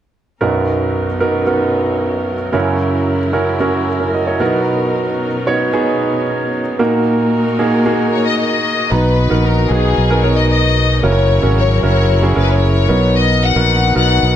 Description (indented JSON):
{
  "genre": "pop",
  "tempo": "113 BPM",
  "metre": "4/4",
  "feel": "straight",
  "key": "B major",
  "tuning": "A4 = 440 Hz",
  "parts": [
    { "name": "clear concert grand piano", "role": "accompaniment", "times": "0.4-14.4 s", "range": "B1 to A#5", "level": "-15 LUFS", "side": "right 2 dB", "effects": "none" },
    { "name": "rich studio string section", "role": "sustained chords", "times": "0.4-14.4 s", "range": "F#2 to A#4", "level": "-23 LUFS", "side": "left 2 dB", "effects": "none" },
    { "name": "warm studio violin section", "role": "melody", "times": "8.1-14.4 s", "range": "G#4 to F#5", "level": "-17 LUFS", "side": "left 5 dB", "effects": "none" },
    { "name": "fingered electric bass", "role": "bass", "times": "8.9-14.4 s", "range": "F#1 to B1", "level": "-14 LUFS", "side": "left 1 dB", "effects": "none" }
  ],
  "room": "wet large studio reverb, RT60 1.4 s, small room ambience",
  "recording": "dark, warm production",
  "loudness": "-12 LUFS",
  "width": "side -10 dB against mid",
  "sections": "0.4-8.9 A section; 8.9-14.4 B section",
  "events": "none",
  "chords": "0.4 Bmaj7; 2.5 F#7; 4.4 Bmaj7; 6.8 D#m/A#; 8.9 Bmaj7; 11.0 F#7; 12.9 Bmaj7"
}